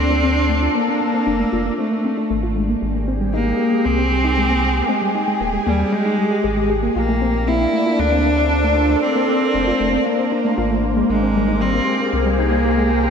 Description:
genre	IDM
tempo	116 BPM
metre	4/4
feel	straight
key	unclear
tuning	A4 = 440 Hz
part	rich cello	melody	0.0-13.1 s	G3 to E4	-20 LUFS	equal	diffuse ambient delay
part	phased analog pad	sustained chords	0.0-13.1 s	Bb3 to C5	-21 LUFS	equal	phaser, chorus
part	warbly dusty pluck	arpeggios	0.0-13.1 s	G3 to Ab4	-22 LUFS	left 2 dB	chorus, tape echo
part	warm sub bass	bass	0.0-13.1 s	Eb1 to Eb2	-22 LUFS	equal	none
room	wet lush hall reverb, RT60 2.5 s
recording	dreamy mix soaked in reverb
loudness	-16 LUFS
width	side -6 dB against mid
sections	0.0-13.1 A section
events	none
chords	0.0 Bbmaj9; 2.6 Abmaj9; 7.0 Bbmaj9; 10.8 Abmaj9

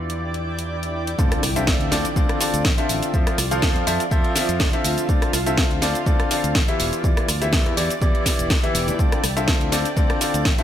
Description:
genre	piano house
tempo	123 BPM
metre	4/4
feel	swing 54% on 16ths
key	D dorian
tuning	A4 = 440 Hz
part	clear grand piano	riff	0.0-10.6 s	D3 to F5	-24 LUFS	left 2 dB	sidechain pumping, ping-pong delay
part	fingered electric bass	bass	0.0-10.6 s	E1 to F2	-27 LUFS	equal	sidechain pumping, low-pass filter
part	granular cloud pad	texture	0.0-10.6 s	E4 to C6	-29 LUFS	right 2 dB	built-in reverb, sidechain pumping
part	house drum kit	drums	0.1-10.6 s	cabasa, hi-hat, rim click, snare drum	-24 LUFS	equal	small room ambience
part	electronic kick drum	drums	1.2-10.6 s	none	-21 LUFS	equal	small room ambience
part	impact	sound effects	1.2-3.1 s	none	-32 LUFS	equal	none
room	light reverb, digital ambience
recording	none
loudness	-18 LUFS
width	side -10 dB against mid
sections	0.0-1.2 A section; 1.2-10.6 B section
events	drop 1.2-10.6; impact 1.2-3.1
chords	0.0 Em7; 1.2 Dm7; 3.1 Fmaj7; 4.8 Dm7; 6.8 Em7; 9.0 Dm7

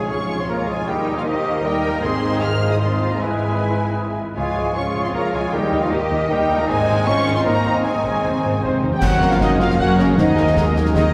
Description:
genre	cinematic, heroic adventure film score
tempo	155 BPM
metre	3/4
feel	straight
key	Ab major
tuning	A4 = 441 Hz
part	warm symphonic violin section	melody	0.0-11.1 s	C5 to F6	-33 LUFS	equal	none
part	dark cor anglais	second line	0.0-8.6 s	Eb4 to F5	-33 LUFS	equal	none
part	mellow clarinet	second line	0.0-11.1 s	F4 to C5	-34 LUFS	equal	none
part	mellow hollow small flute group	second line	0.0-11.0 s	B4 to G5	-31 LUFS	equal	none
part	warm symphonic violin section	second line	0.0-11.1 s	Ab4 to F6	-31 LUFS	equal	none
part	warm symphonic viola section	accompaniment	0.0-11.1 s	Ab3 to Db5	-31 LUFS	equal	none
part	clear trombone section	sustained chords	0.0-11.1 s	Db3 to C4	-32 LUFS	equal	none
part	warm French horn section	sustained chords	0.0-11.1 s	Eb3 to G4	-26 LUFS	equal	none
part	clear trumpet section	stabs	0.0-11.1 s	B4 to G5	-30 LUFS	equal	none
part	dark studio double bass section	bass	0.0-11.1 s	Ab1 to Gb2	-27 LUFS	equal	none
part	warm symphonic cello section	bass	0.0-11.0 s	C3 to Bb4	-28 LUFS	equal	none
part	timpani	percussion	2.0-2.6, 5.5-10.7 s	Ab2 to Eb3	-32 LUFS	equal	none
part	dark tuba	bass	9.0-11.1 s	Gb1 to Eb2	-28 LUFS	equal	none
part	concert snare drum, clash cymbals and concert bass drum	drums	9.0-11.1 s	none	-29 LUFS	equal	none
part	clash cymbals and concert bass drum	percussion	9.0-9.8 s	none	-28 LUFS	equal	none
room	wet cathedral reverb, RT60 6.5 s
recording	recorded in a church or concert hall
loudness	-19 LUFS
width	mono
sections	0.0-9.0 A section; 9.0-11.1 B section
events	timpani fill 7.8-9.0; band accent 9.0-9.4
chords	0.0 Db; 0.9 Eb; 2.0 Ab; 3.2 E/G#; 4.4 Db; 5.5 Eb; 6.7 Ab; 9.0 Gb; 10.2 Ebsus4

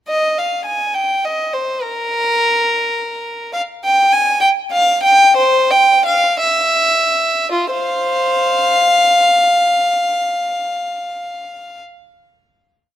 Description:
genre	classical, baroque-style suite movement for unaccompanied violin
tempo	51-71 BPM (dotted quarters)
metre	6/8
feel	rubato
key	F minor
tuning	A4 = 440 Hz
part	rich violin	solo	0.1-11.8 s	F4 to Ab5	-13 LUFS	equal	none
room	moderate scoring stage reverb, RT60 1.8 s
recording	close, detailed microphones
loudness	-12 LUFS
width	side -12 dB against mid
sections	0.1-7.5 A section; 7.5-12.1 final chord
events	slowing down 2.7-7.5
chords	none

